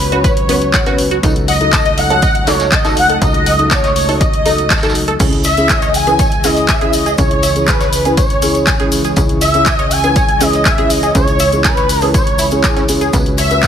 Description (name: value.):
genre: progressive house.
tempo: 121 BPM.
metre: 4/4.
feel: straight.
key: C# minor.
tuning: A4 = 440 Hz.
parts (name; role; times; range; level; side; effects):
expressive synth lead; melody; 0.0-13.7 s; B4 to G#5; -16 LUFS; equal; ensemble chorus, dub echo.
warm symphonic violin section; second line; 0.0-13.7 s; B4 to G#5; -23 LUFS; left 1 dB; sidechain pumping, dub echo.
warm analog pad; sustained chords; 0.0-13.7 s; E3 to D#5; -24 LUFS; right 1 dB; chorus, sidechain pumping.
tight sequencer bass; bass; 0.0-13.7 s; C#2; -20 LUFS; equal; sidechain pumping.
tight sequenced synth; arpeggios; 0.1-13.7 s; B3 to A5; -21 LUFS; right 1 dB; chorus, phaser, cassette tape, sidechain pumping, dub echo.
felt-muted upright piano; stabs; 0.1-13.6 s; C#4 to C#5; -20 LUFS; left 1 dB; sidechain pumping, dub echo.
house drum kit; drums; 0.1-13.7 s; crash cymbal, handclaps, hi-hat; -19 LUFS; left 1 dB; none.
electronic kick drum; drums; 0.2-13.7 s; none; -16 LUFS; equal; none.
vintage brush drum kit; drums; 0.2-13.7 s; hi-hat, snare drum, tambourine; -28 LUFS; equal; none.
cabasa; percussion; 5.2-13.7 s; none; -26 LUFS; left 3 dB; none.
room: light reverb, small room ambience.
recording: none.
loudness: -10 LUFS.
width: side -8 dB against mid.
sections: 0.0-13.7 A section.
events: none.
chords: 0.0 Bsus2/C#; 1.2 D#dim/C#; 5.2 C#m; 13.1 Bsus2/C#.